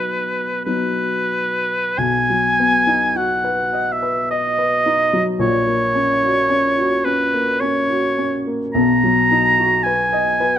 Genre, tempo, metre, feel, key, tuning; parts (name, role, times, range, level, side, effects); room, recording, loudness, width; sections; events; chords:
classical, romantic duo for oboe and grand piano; 42-56 BPM; 3/4; rubato; B major; A4 = 440 Hz
warm oboe; melody; 0.0-10.6 s; B4 to A#5; -17 LUFS; right 1 dB
warm baby grand piano; accompaniment; 0.0-10.6 s; A#1 to D#5; -20 LUFS; left 2 dB
moderate stone room reverb, RT60 1.3 s; close, detailed microphones; -15 LUFS; side -10 dB against mid
0.0-2.0 A section; 2.0-10.6 B section
0.0 B; 5.4 F#/A#; 8.7 B